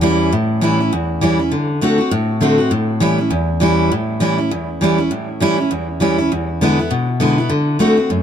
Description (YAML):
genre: rock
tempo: 200 BPM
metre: 4/4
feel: swing 59% on 8ths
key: A mixolydian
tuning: A4 = 440 Hz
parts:
  - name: picked steel-string acoustic guitar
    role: solo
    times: 0.0-8.2 s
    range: E2 to F#4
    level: -14 LUFS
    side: equal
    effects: analog delay
room: moderate booth ambience, RT60 0.3 s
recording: none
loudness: -14 LUFS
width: side -8 dB against mid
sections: 0.0-8.2 A section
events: none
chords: 0.0 A7; 1.5 D7; 2.7 A7; 6.3 E7; 7.5 D7